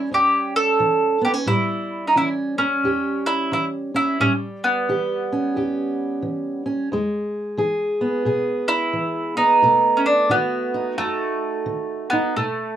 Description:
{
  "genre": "acoustic country blues, solo or duo",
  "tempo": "88 BPM",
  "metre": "4/4",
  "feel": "swing 62% on 8ths",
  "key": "unclear",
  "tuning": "A4 = 439 Hz",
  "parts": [
    { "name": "fingerpicked steel-string acoustic guitar", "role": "accompaniment", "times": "0.0-12.8 s", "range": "E2 to G#4", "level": "-24 LUFS", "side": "right 1 dB", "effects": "none" },
    { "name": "mandolin", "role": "melody", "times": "0.1-12.8 s", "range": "A3 to A4", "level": "-19 LUFS", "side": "right 2 dB", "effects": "none" }
  ],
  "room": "moderate booth ambience, RT60 0.2 s",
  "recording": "none",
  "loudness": "-18 LUFS",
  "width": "side -10 dB against mid",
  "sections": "0.0-12.8 A section",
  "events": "none",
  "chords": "0.0 A7; 6.9 E; 9.6 B7",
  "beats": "0.12 0.80 | 1.48 2.15 2.83 3.51 | 4.19 4.87 5.55 6.23 | 6.91 7.59 8.27 8.95 | 9.63 10.31 10.99 11.68 | 12.36"
}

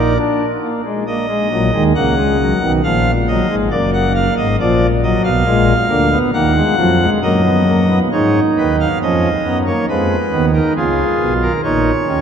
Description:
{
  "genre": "classical, baroque-style 4-part fugue for pipe organ",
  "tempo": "68 BPM",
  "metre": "4/4",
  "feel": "straight",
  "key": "Eb minor",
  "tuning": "A4 = 440 Hz",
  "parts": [
    { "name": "pipe organ, cornet", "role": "solo", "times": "0.0-12.2 s", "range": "Gb1 to Gb5", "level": "-13 LUFS", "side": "equal", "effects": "none" }
  ],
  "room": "wet cathedral reverb, RT60 7.1 s",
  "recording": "dark, warm production",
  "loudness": "-13 LUFS",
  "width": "side -7 dB against mid",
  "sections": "0.0-1.1 A section; 1.1-8.1 B section; 8.1-12.2 A section",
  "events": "none",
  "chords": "0.0 Bb; 1.1 Ebm/Bb; 2.8 Bb; 4.6 Bb7; 6.3 Ebm; 9.9 Fdim; 11.6 Bbm",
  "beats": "0.17 | 1.07 1.96 2.84 3.72 | 4.59 5.46 6.34 7.22 | 8.11 9.00 9.88 10.76 | 11.64"
}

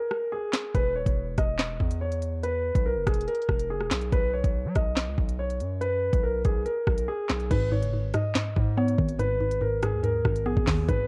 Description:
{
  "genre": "hip hop, drill",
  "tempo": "142 BPM",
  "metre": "4/4",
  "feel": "half-time",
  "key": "G# minor",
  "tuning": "A4 = 441 Hz",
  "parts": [
    { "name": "dark grand piano", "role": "melody", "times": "0.0-11.1 s", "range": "G#4 to D#5", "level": "-32 LUFS", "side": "equal", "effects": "analog delay" },
    { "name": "drill drum kit", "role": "drums", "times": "0.1-11.0 s", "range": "crash cymbal, handclaps, hi-hat, kick drum, rim click, snare drum", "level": "-29 LUFS", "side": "equal", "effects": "none" },
    { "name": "distorted 808-style bass", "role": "bass", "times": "0.7-11.1 s", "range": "D#1 to F#3", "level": "-33 LUFS", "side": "equal", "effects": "distortion" },
    { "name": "mallet-like synth pluck", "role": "accompaniment", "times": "7.5-11.1 s", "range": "G#2 to B3", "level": "-30 LUFS", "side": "equal", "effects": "chorus, phaser" }
  ],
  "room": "moderate spring reverb, RT60 2.0 s",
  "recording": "worn, warbling old tape, cassette tape, warbly pitch drift",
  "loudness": "-27 LUFS",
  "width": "mono",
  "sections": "0.0-7.5 A section; 7.5-11.1 B section",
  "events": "break 0.0-0.7",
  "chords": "0.0 N.C.; 0.7 E5; 4.1 B5; 7.5 G#m",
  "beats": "0.32 | 0.74 1.17 1.59 2.01 | 2.43 2.86 3.28 3.70 | 4.12 4.55 4.97 5.39 | 5.81 6.24 6.66 7.08 | 7.50 7.93 8.35 8.77 | 9.19 9.62 10.04 10.46 | 10.88"
}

